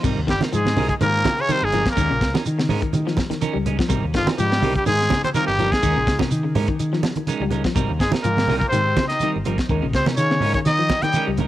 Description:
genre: afrobeat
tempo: 124 BPM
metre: 4/4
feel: swing 54% on 16ths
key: unclear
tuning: A4 = 439 Hz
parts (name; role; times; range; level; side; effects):
- electric guitar at the edge of break-up; arpeggios; 0.0-11.5 s; C3 to G3; -27 LUFS; left 6 dB; cassette tape, analog delay
- clean electric guitar; stabs; 0.0-11.5 s; G3 to Bb4; -29 LUFS; right 7 dB; cassette tape, analog delay
- fingered electric bass; bass; 0.0-11.5 s; G1 to Eb3; -24 LUFS; equal; none
- tight funk drum kit; drums; 0.0-11.5 s; crash cymbal, hi-hat, kick drum, snare drum; -25 LUFS; equal; cassette tape
- shekere; percussion; 0.0-11.5 s; none; -30 LUFS; right 4 dB; none
- growling trumpet; melody; 0.3-11.3 s; F4 to G5; -22 LUFS; equal; analog delay
- raspy baritone saxophone; second line; 0.3-11.3 s; F2 to G3; -33 LUFS; left 6 dB; cassette tape
- trombone with metal mute; second line; 0.3-11.3 s; F3 to G4; -33 LUFS; right 6 dB; cassette tape
- congas; percussion; 0.4-11.5 s; none; -26 LUFS; right 4 dB; none
room: little or no reverb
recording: home recording on cassette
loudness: -18 LUFS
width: side -14 dB against mid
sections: 0.0-11.5 A section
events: none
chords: 0.0 Abmaj9; 2.0 Eb7sus4; 3.9 Abmaj9; 5.8 Eb7sus4; 7.8 Abmaj9; 9.7 Eb7sus4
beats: | 0.04 0.52 1.00 1.49 | 1.97 2.45 2.93 3.41 | 3.90 4.38 4.86 5.34 | 5.83 6.31 6.79 7.28 | 7.76 8.24 8.73 9.21 | 9.69 10.17 10.66 11.14

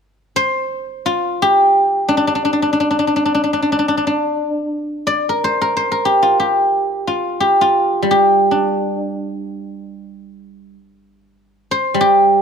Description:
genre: chinese traditional, Chinese solo plucked strings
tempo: free time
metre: none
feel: none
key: G yu mode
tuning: A4 = 444 Hz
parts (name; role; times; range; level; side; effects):
- guzheng; solo; 0.4-12.4 s; G3 to D5; -14 LUFS; equal; none
room: light reverb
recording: close, detailed microphones, faint mains hum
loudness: -14 LUFS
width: side -7 dB against mid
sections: 0.0-12.4 A section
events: none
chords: none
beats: free time

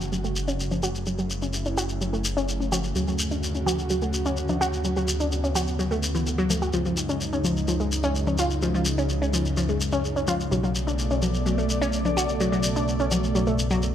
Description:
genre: melodic techno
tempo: 127 BPM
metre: 4/4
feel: straight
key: F# minor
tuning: A4 = 440 Hz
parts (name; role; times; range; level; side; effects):
- lush unison pad; sustained chords; 0.0-13.9 s; B2 to D5; -30 LUFS; right 1 dB; chorus
- fat analog bass; bass; 0.0-13.9 s; F#1 to D2; -28 LUFS; equal; none
- bowed-like drone; drone; 0.0-13.9 s; F#2 to C#3; -35 LUFS; left 1 dB; built-in reverb
- shekere; percussion; 0.0-13.9 s; none; -32 LUFS; left 2 dB; none
- impact; sound effects; 0.0-1.1 s; none; -40 LUFS; equal; none
- analog pluck; arpeggios; 0.1-13.7 s; E3 to F#4; -27 LUFS; equal; chorus, digital delay
- congas; drums; 0.7-13.2 s; none; -31 LUFS; left 3 dB; overdrive
room: moderate plate reverb, RT60 1.4 s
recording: bright 1980s-style digital production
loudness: -22 LUFS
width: side -10 dB against mid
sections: 0.0-13.9 A section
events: impact 0.0-1.1; filter sweep on synth pluck 0.0-13.9; filter sweep on analog synth pad 0.0-13.9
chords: 0.0 F#m; 3.0 D; 6.7 C#sus2; 10.5 Bm7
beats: 0.12 0.59 | 1.07 1.54 2.01 2.48 | 2.96 3.43 3.90 4.37 | 4.85 5.32 5.79 6.26 | 6.74 7.21 7.68 8.15 | 8.63 9.10 9.57 10.04 | 10.52 10.99 11.46 11.93 | 12.40 12.88 13.35 13.82

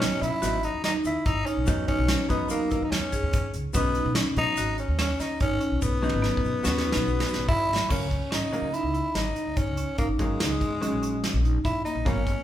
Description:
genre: progressive instrumental, band music in an uneven meter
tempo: 144 BPM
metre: 5/4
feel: straight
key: C# dorian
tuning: A4 = 441 Hz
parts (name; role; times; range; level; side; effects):
- growling tenor saxophone; melody; 0.0-12.4 s; G#3 to E4; -29 LUFS; left 1 dB; none
- vintage hollow-body jazz guitar; accompaniment; 0.0-12.2 s; C#3 to F#4; -32 LUFS; equal; none
- marimba with hard mallets; arpeggios; 0.0-12.3 s; A#3 to G#4; -31 LUFS; right 1 dB; none
- upright bass; bass; 0.0-12.3 s; G#1 to E3; -30 LUFS; equal; none
- soft brush drum kit; drums; 0.0-12.4 s; crash cymbal, hi-hat, kick drum, snare drum, toms; -29 LUFS; equal; none
- tube shaker; percussion; 0.2-7.5 s; none; -42 LUFS; left 7 dB; none
room: moderate large studio reverb, RT60 1.1 s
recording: band playing live in one room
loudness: -23 LUFS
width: side -12 dB against mid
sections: 0.0-7.9 A section; 7.9-12.4 B section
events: drum fill 5.8-7.9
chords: 0.0 Badd9; 1.7 C#m7; 3.7 Badd9; 7.9 C#sus2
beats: 0.01 0.42 0.84 1.25 | 1.67 2.08 2.50 2.92 3.33 | 3.75 4.16 4.58 5.00 5.41 | 5.83 6.24 6.66 7.07 7.49 | 7.90 8.32 8.73 9.15 9.56 | 9.98 10.39 10.81 11.23 11.64 | 12.06

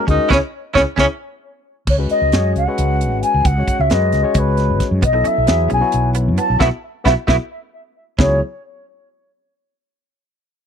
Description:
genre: electric jazz fusion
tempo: 266 BPM (eighths)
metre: 7/8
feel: straight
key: C# minor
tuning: A4 = 440 Hz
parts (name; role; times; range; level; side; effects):
- mellow wooden flute; melody; 0.0-8.4 s; B4 to A5; -18 LUFS; left 1 dB; none
- bright tenor saxophone; second line; 0.0-1.1 s; C#4 to D#4; -20 LUFS; right 5 dB; none
- barky tine electric piano; accompaniment; 0.0-8.4 s; F#3 to C#5; -23 LUFS; left 6 dB; medium stereo tremolo
- direct-recorded clean electric guitar; stabs; 0.1-1.0, 5.0-8.3 s; A3 to E4; -24 LUFS; right 8 dB; ensemble chorus
- mellow fretless electric bass; bass; 0.1-8.4 s; G#1 to F#2; -18 LUFS; equal; none
- tight funk drum kit; drums; 0.1-8.3 s; crash cymbal, hi-hat, kick drum, snare drum; -18 LUFS; right 1 dB; none
room: small room ambience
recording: dry, close 1970s-style studio recording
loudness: -14 LUFS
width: side -8 dB against mid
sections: 0.0-1.9 A section; 1.9-8.2 B section; 8.2-9.8 C section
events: band accent 0.3-1.9, 6.6-8.2; drum fill 1.2-1.9, 7.5-8.2; tine electric piano fill 1.2-1.9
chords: 0.3 C#m; 1.9 C#9sus4; 5.0 B7sus4; 8.2 C#m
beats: 0.08 | 0.30 0.53 0.76 0.98 1.21 1.43 1.66 | 1.88 2.11 2.33 2.56 2.78 3.01 3.23 | 3.46 3.68 3.91 4.13 4.36 4.59 4.81 | 5.04 5.26 5.49 5.71 5.94 6.16 6.39 | 6.61 6.84 7.06 7.29 7.51 7.74 7.96 | 8.19

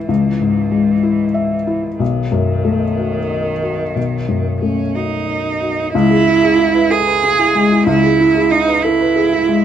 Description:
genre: neoclassical piano and strings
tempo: 62 BPM (dotted quarters)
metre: 6/8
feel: rubato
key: C# minor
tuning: A4 = 440 Hz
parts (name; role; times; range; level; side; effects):
- rich cello; second line; 0.0-9.6 s; D#3 to G#4; -16 LUFS; right 6 dB; none
- felt-muted upright piano; accompaniment; 0.0-9.6 s; B1 to E5; -16 LUFS; left 3 dB; none
room: moderate studio ambience, RT60 0.5 s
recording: none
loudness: -13 LUFS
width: side -9 dB against mid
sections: 0.0-5.9 A section; 5.9-9.6 B section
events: none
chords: 0.0 C#m; 2.0 B7; 5.9 C#m7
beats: | 0.09 1.05 | 2.01 2.98 | 3.96 4.94 | 5.93 6.90 | 7.87 8.83

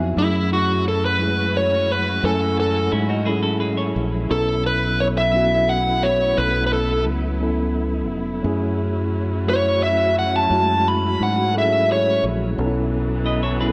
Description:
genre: slow six-eight R&B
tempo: 58 BPM (dotted quarters)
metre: 6/8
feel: straight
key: F# minor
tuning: A4 = 441 Hz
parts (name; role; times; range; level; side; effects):
- mellow tine electric piano; accompaniment; 0.0-13.7 s; F#3 to G#5; -26 LUFS; equal; none
- warm studio string section; sustained chords; 0.0-13.7 s; E3 to G#4; -34 LUFS; equal; none
- fingered electric bass; bass; 0.0-13.7 s; E#1 to G#2; -26 LUFS; equal; none
- dark smooth lead guitar; melody; 0.2-12.2 s; E4 to B5; -22 LUFS; equal; overdrive
- semi-hollow electric guitar; second line; 2.9-4.3, 13.3-13.7 s; C#4 to D#5; -30 LUFS; equal; subtle chorus, tape echo
room: light reverb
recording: none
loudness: -20 LUFS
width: mono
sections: 0.2-13.7 A section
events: tine electric piano fill 0.0; lead electric guitar solo 0.2-13.7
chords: 0.2 F#m7; 4.3 B7sus4; 8.4 F#m7; 12.6 B7sus4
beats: | 0.16 1.19 | 2.23 3.26 | 4.30 5.33 | 6.37 7.40 | 8.43 9.47 | 10.50 11.54 | 12.57 13.61

